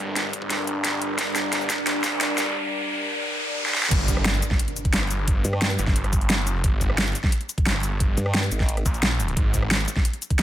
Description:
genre	dark technical drum and bass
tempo	176 BPM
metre	4/4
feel	straight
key	G phrygian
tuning	A4 = 442 Hz
part	deep dark ambient pad	sustained chords	0.0-3.9 s	G3 to D5	-30 LUFS	equal	chorus, built-in reverb, sidechain pumping
part	snarling distorted saw bass	bass	0.0-10.4 s	G1 to Bb1	-26 LUFS	equal	distortion, overdrive, sidechain pumping, high-pass filter
part	riser and impact	sound effects	1.1-5.3 s	none	-30 LUFS	equal	none
part	dubstep drum kit	drums	0.2-10.4 s	cabasa, crash cymbal, hi-hat, rim click, snare drum	-24 LUFS	equal	overdrive, high-pass filter on perc, high-pass filter on snare, high-pass filter on hats, high-pass filter on cymbals
part	electronic kick drum	drums	0.3-10.4 s	none	-23 LUFS	equal	overdrive, high-pass filter on kick
part	formant-sweep wobble bass	bass	5.4-5.8, 8.2-8.8 s	Ab1 to G2	-24 LUFS	equal	chorus
room	little or no reverb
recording	high-pass filter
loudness	-21 LUFS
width	side -12 dB against mid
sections	0.0-3.9 A section; 3.9-10.4 B section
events	build-up 0.0-3.9; drum fill 0.0-2.5, 3.7; riser 1.1-3.9; drop 3.9-10.4; impact 3.9-5.3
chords	0.0 Gm; 9.4 Ab5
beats	0.16 0.50 0.84 | 1.19 1.53 1.87 2.21 | 2.55 2.89 3.23 3.57 | 3.91 4.25 4.59 4.93 | 5.28 5.62 5.96 6.30 | 6.64 6.98 7.32 7.66 | 8.00 8.34 8.69 9.03 | 9.37 9.71 10.05 10.39

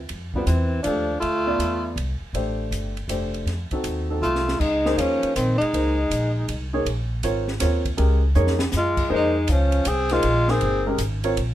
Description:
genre	modal jazz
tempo	160 BPM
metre	3/4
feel	swing 66% on 8ths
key	D dorian, Bb dorian from 4.6 s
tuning	A4 = 437 Hz
part	upright bass	bass	0.0-11.5 s	F1 to Gb2	-24 LUFS	equal	none
part	open jazz drum kit	drums	0.1-11.5 s	crash cymbal, hi-hat, kick drum, ride cymbal, snare drum	-32 LUFS	right 1 dB	none
part	breathy tenor saxophone	melody	0.4-1.9, 4.2-6.7, 8.8-10.9 s	B3 to Ab4	-23 LUFS	right 1 dB	none
part	growling alto saxophone	second line	0.4-1.9, 4.2-6.7, 8.8-10.9 s	D3 to C4	-27 LUFS	left 3 dB	none
part	warm baby grand piano	accompaniment	0.4-11.4 s	G3 to E5	-26 LUFS	equal	none
room	light reverb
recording	minimal, uncompressed stereo recording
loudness	-20 LUFS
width	side -13 dB against mid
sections	0.0-4.6 A section; 4.6-11.5 B section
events	drum fill 4.2-4.6, 8.4-8.7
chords	0.0 Dm9; 3.5 F7b9; 4.6 Bbm11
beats	| 0.10 0.47 0.85 | 1.22 1.60 1.98 | 2.35 2.73 3.10 | 3.48 3.85 4.23 | 4.61 4.98 5.36 | 5.73 6.11 6.48 | 6.86 7.23 7.61 | 7.99 8.36 8.73 | 9.11 9.49 9.86 | 10.24 10.61 10.99 | 11.36

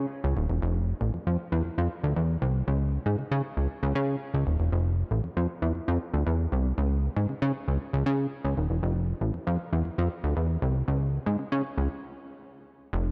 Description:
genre	funk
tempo	117 BPM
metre	4/4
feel	straight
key	unclear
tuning	A4 = 440 Hz
part	plucky analog bass	solo	0.0-13.1 s	Eb1 to Db3	-28 LUFS	equal	none
room	moderate plate reverb, RT60 3.3 s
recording	dark, warm production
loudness	-28 LUFS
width	mono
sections	0.0-12.9 A section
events	break 11.9-12.9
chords	none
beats	0.11 | 0.62 1.14 1.65 2.16 | 2.68 3.19 3.70 4.21 | 4.73 5.24 5.75 6.26 | 6.78 7.29 7.80 8.32 | 8.83 9.34 9.86 10.37 | 10.88 11.39 11.91 12.42 | 12.93

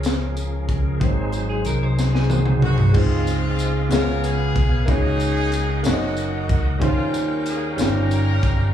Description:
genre	slow gospel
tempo	62 BPM (dotted quarters)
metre	6/8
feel	straight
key	Db major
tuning	A4 = 439 Hz
part	clear upright piano	accompaniment	0.0-8.7 s	Db3 to F5	-26 LUFS	equal	slapback echo
part	bright tonewheel organ	sustained chords	0.0-8.7 s	Db3 to Ab5	-31 LUFS	equal	slow rotary speaker, overdrive, chorus vibrato
part	fingered electric bass	bass	0.0-8.7 s	Gb1 to Eb2	-21 LUFS	equal	none
part	crisp fusion drum kit	drums	0.0-8.6 s	crash cymbal, hi-hat, kick drum, snare drum, toms	-22 LUFS	equal	none
part	tambourine	percussion	0.0-8.4 s	none	-37 LUFS	right 2 dB	none
part	clean electric guitar	second line	1.5-2.9 s	Ab4 to C5	-31 LUFS	equal	spring reverb, slapback echo
part	clear horn section	melody	2.6-8.7 s	Ab3 to Bb4	-26 LUFS	left 2 dB	slapback echo
room	little or no reverb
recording	live gig heard through the venue's PA, club reverb, studio ambience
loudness	-18 LUFS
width	side -10 dB against mid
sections	0.0-3.0 A section; 3.0-8.7 B section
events	drum fill 2.0-3.0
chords	0.0 Bbm7; 1.0 Ab7; 3.0 Dbmaj9; 3.9 Db7; 4.9 Gb6/Db; 6.8 Eb13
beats	0.04 | 1.01 1.98 | 2.95 3.92 | 4.88 5.85 | 6.82 7.78

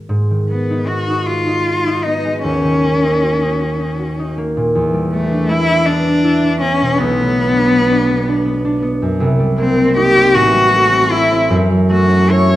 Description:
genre	classical, impressionist duo for cello and harp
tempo	52 BPM (dotted quarters)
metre	6/8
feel	rubato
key	unclear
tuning	A4 = 440 Hz
part	concert harp	accompaniment	0.0-12.6 s	A1 to A#5	-15 LUFS	right 1 dB	none
part	rich cello	melody	0.5-12.6 s	A3 to Db5	-15 LUFS	left 1 dB	none
room	wet recital hall reverb, RT60 1.3 s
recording	none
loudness	-12 LUFS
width	side -14 dB against mid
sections	0.1-12.6 A section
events	none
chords	0.1 G#m7; 2.4 D#m7; 4.8 Em7; 7.0 Bm7; 9.2 Cm7; 10.4 Am7; 11.5 Gbm7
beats	| 0.10 1.27 | 2.44 3.60 | 4.75 5.88 | 7.00 8.11 | 9.21 10.36 | 11.52

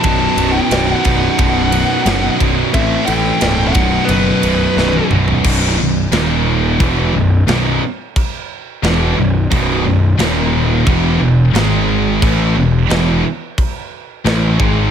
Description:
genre	heavy metal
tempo	89 BPM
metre	4/4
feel	straight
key	unclear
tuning	A4 = 442 Hz
part	high-gain lead guitar	melody	0.0-5.0 s	B4 to A5	-19 LUFS	left 2 dB	distortion
part	high-gain lead guitar	second line	0.0-5.1 s	F#3 to F#4	-24 LUFS	right 3 dB	none
part	heavy high-gain guitar	riff	0.0-14.9 s	B1 to A3	-19 LUFS	right 11 dB	distortion
part	overdriven semi-hollow guitar	riff	0.0-14.9 s	B1 to A4	-21 LUFS	equal	none
part	scooped high-gain guitar	riff	0.0-14.9 s	B1 to A3	-18 LUFS	left 6 dB	distortion
part	fuzz picked electric bass	bass	0.0-14.9 s	B0 to A1	-18 LUFS	equal	overdrive
part	tight metal drum kit	drums	0.0-14.8 s	china cymbal, crash cymbal, kick drum, ride cymbal, snare drum, toms	-20 LUFS	equal	none
room	small room ambience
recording	none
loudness	-12 LUFS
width	side -8 dB against mid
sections	0.0-5.4 A section; 5.4-14.9 B section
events	drum fill 4.8-5.4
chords	0.0 B; 2.7 Am; 3.8 B; 5.4 B5; 6.1 D#5; 6.8 B5; 10.2 D#5; 10.9 E5; 11.5 G#5; 12.2 E5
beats	| 0.04 0.71 1.39 2.06 | 2.74 3.42 4.09 4.77 | 5.45 6.13 6.80 7.48 | 8.16 8.84 9.51 10.19 | 10.87 11.55 12.22 12.90 | 13.58 14.26

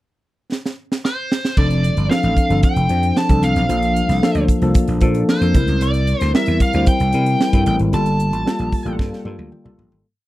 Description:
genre	polished 1980s jazz-funk pop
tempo	113 BPM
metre	4/4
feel	straight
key	F major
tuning	A4 = 440 Hz
part	crisp fusion drum kit	drums	0.5-10.0 s	crash cymbal, hi-hat, kick drum, snare drum, toms	-18 LUFS	right 1 dB	none
part	nasal lead guitar with a parked wah	melody	1.1-9.0 s	C5 to A5	-22 LUFS	equal	overdrive
part	mellow tine electric piano	accompaniment	1.6-10.1 s	F3 to C6	-20 LUFS	left 2 dB	analog chorus
part	vintage slap bass	bass	1.6-10.0 s	F1 to C3	-19 LUFS	equal	none
room	little or no reverb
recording	dry, close 1970s-style studio recording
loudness	-15 LUFS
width	side -16 dB against mid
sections	0.0-1.6 pickup bar; 1.6-10.0 verse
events	drum fill 0.5-1.6, 9.0-10.0; fade-out 7.9-10.0; tine electric piano fill 9.3-10.0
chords	0.0 N.C.; 1.6 F6; 3.7 Bbmaj7; 5.5 C7; 7.9 Gm9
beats	0.51 1.04 | 1.57 2.10 2.63 3.16 | 3.69 4.22 4.75 5.28 | 5.81 6.34 6.87 7.40 | 7.93 8.46 8.99 9.52

